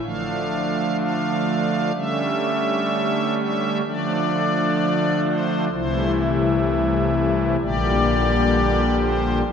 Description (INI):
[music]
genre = classical, chorale-style piece for pipe organ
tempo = 64 BPM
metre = 4/4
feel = rubato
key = D minor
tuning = A4 = 443 Hz
[part]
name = pipe organ, strings celeste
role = solo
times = 0.0-9.5 s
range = Bb1 to F5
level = -19 LUFS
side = equal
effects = none
[sound]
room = wet church reverb, RT60 2.5 s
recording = none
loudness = -19 LUFS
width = side -7 dB against mid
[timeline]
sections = 0.0-9.5 A section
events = none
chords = 0.0 Dm; 2.0 A7/D; 3.9 Dm; 5.7 Am/C; 7.6 Gm/Bb